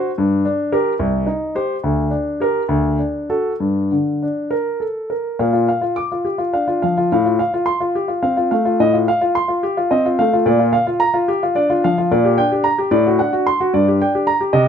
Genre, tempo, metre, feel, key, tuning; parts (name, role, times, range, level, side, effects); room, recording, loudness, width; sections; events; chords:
classical, baroque-style suite movement for grand piano; 64-76 BPM (dotted quarters); 6/8; rubato; G minor, Bb major from 5.4 s; A4 = 440 Hz
warm grand piano; solo; 0.0-14.7 s; C2 to D6; -15 LUFS; equal
light reverb; minimal, uncompressed stereo recording; -15 LUFS; side -7 dB against mid
0.0-5.4 A section; 5.4-14.7 A section
0.2 Gm; 1.0 Cm; 1.8 Gm/D; 2.7 D; 3.6 Gm; 5.4 Bb; 7.1 F/A; 8.8 F7/A; 10.5 Bb; 12.1 Gm/Bb; 12.9 D7/A; 13.7 Gm